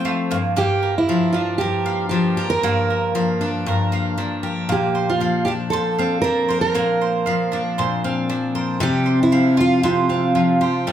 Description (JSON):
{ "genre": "acoustic pop", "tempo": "116 BPM", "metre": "4/4", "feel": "swing 55% on 16ths", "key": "unclear", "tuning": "A4 = 441 Hz", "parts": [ { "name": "picked steel-string acoustic guitar", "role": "accompaniment", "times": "0.0-10.9 s", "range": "G2 to Bb4", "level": "-20 LUFS", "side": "left 2 dB", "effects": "none" }, { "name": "mandolin", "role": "arpeggios", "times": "0.0-10.9 s", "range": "G3 to G5", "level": "-25 LUFS", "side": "right 4 dB", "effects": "none" }, { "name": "fingerpicked steel-string acoustic guitar", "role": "melody", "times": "0.6-10.9 s", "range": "E4 to Bb4", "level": "-21 LUFS", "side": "right 3 dB", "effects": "none" } ], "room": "moderate large studio reverb, RT60 0.8 s", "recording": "band playing live in one room", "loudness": "-17 LUFS", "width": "side -10 dB against mid", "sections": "0.0-10.9 A section", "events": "none", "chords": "0.3 Gm7; 4.7 Bbadd9; 8.8 Csus4" }